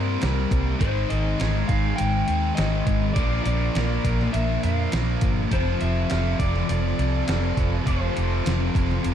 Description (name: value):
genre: rock, shoegaze and dream pop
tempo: 102 BPM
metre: 4/4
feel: straight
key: unclear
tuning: A4 = 440 Hz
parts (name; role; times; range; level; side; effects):
- electric guitar through a small old amp; melody; 0.0-9.1 s; Bb4 to G5; -30 LUFS; left 2 dB; tape echo
- biting overdriven guitar; riff; 0.0-9.1 s; Ab2 to Bb4; -31 LUFS; right 14 dB; reverse reverb
- distorted electric guitar; riff; 0.0-9.1 s; F2 to C4; -29 LUFS; equal; distortion
- thick fuzz guitar; riff; 0.0-9.1 s; F2 to C4; -29 LUFS; left 10 dB; distortion, analog chorus
- vintage muted fingered electric bass; bass; 0.0-9.1 s; F1 to G2; -25 LUFS; right 1 dB; none
- gated 80s digital drum machine; drums; 0.2-9.1 s; hi-hat, kick drum, snare drum; -27 LUFS; right 1 dB; gated reverb, gated reverb snare, overdrive
room: little or no reverb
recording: dark, warm production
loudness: -20 LUFS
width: side -9 dB against mid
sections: 0.0-9.1 A section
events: none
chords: 0.0 C7; 0.8 Abmaj7; 3.2 Bb; 5.5 F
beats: 0.22 | 0.81 1.40 1.99 2.58 | 3.17 3.75 4.34 4.93 | 5.52 6.11 6.70 7.28 | 7.87 8.46 9.04